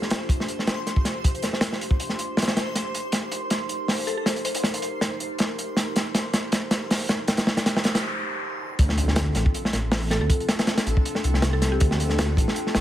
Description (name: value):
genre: drum and bass, jungle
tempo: 159 BPM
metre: 4/4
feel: swing 54% on 16ths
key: D phrygian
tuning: A4 = 439 Hz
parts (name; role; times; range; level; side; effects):
- mallet-like synth pluck; melody; 0.0, 4.1-4.7, 10.1-12.1 s; G4 to C5; -34 LUFS; equal; chorus, dub echo
- warbly tape-like pad; sustained chords; 0.0-12.8 s; C4 to C5; -33 LUFS; equal; chorus, built-in reverb
- crunchy breakbeat drum kit; drums; 0.0-12.8 s; hi-hat, kick drum, snare drum; -23 LUFS; equal; none
- backwards swelling texture; texture; 0.0-12.8 s; A4 to C6; -36 LUFS; equal; built-in reverb
- noise sweep and impact; sound effects; 7.7-10.3 s; none; -32 LUFS; equal; none
- dark detuned saw bass; bass; 8.8-12.8 s; A1 to D2; -24 LUFS; equal; none
room: light reverb, small room ambience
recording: vinyl crackle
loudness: -22 LUFS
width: side -12 dB against mid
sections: 0.0-8.8 A section; 8.8-12.8 B section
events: build-up 0.0-8.8; filter sweep on ambient pad 0.0-8.8; drum fill 2.8-8.0; noise sweep 7.7-8.8; break 8.0-8.8; drop 8.8-12.8; impact 8.8-10.3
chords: 0.0 Dm7; 2.8 Cm7; 8.8 Dm7